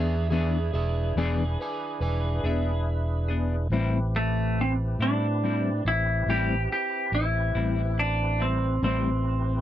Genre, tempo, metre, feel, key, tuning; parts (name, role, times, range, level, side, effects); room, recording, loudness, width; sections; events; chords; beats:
slow blues; 47 BPM (dotted quarters); 12/8; straight; A minor; A4 = 440 Hz
clean lap steel guitar; melody; 0.0-9.6 s; A3 to G#4; -29 LUFS; equal
electric slide guitar; second line; 0.0-3.3 s; G#4 to G#5; -34 LUFS; right 6 dB
clean electric guitar; accompaniment; 0.0-9.1 s; A2 to G#4; -29 LUFS; left 5 dB; harmonic tremolo
tonewheel organ; sustained chords; 0.0-9.6 s; C4 to B4; -36 LUFS; equal; slow rotary speaker, overdrive, chorus vibrato
fingered electric bass; bass; 0.0-9.6 s; E1 to A2; -26 LUFS; equal
light reverb; -24 LUFS; side -12 dB against mid
0.0-3.7 A section; 3.7-9.6 A section
0.0 E7; 3.7 Am7
1.16 2.44 | 3.72 5.00 6.27 7.55 | 8.83